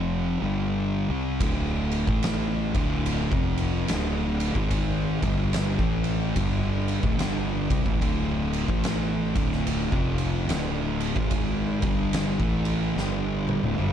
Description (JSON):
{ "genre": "stoner and doom metal", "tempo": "73 BPM", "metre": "4/4", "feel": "swing 62% on 8ths", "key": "D minor", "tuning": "A4 = 439 Hz", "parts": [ { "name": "thick fuzz guitar", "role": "riff", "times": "0.0-13.9 s", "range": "D2 to C4", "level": "-28 LUFS", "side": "left 9 dB", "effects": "distortion" }, { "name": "thick fuzz guitar", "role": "riff", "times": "0.0-13.9 s", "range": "D2 to C4", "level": "-29 LUFS", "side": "right 11 dB", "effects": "distortion" }, { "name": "fuzz fingered electric bass", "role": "bass", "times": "0.0-13.9 s", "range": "D1 to C2", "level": "-30 LUFS", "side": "equal", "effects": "overdrive" }, { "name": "oversized low-tuned drum kit", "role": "drums", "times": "1.4-13.9 s", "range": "kick drum, ride cymbal, snare drum, toms", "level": "-28 LUFS", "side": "equal", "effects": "none" } ], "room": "little or no reverb", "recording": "dark, warm production", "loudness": "-23 LUFS", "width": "side -9 dB against mid", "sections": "0.0-13.9 A section", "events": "drum fill 13.0-13.9", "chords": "0.0 Dm", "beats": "0.58 | 1.41 2.23 3.06 3.88 | 4.71 5.54 6.36 7.19 | 8.01 8.84 9.66 10.49 | 11.31 12.14 12.96 13.79" }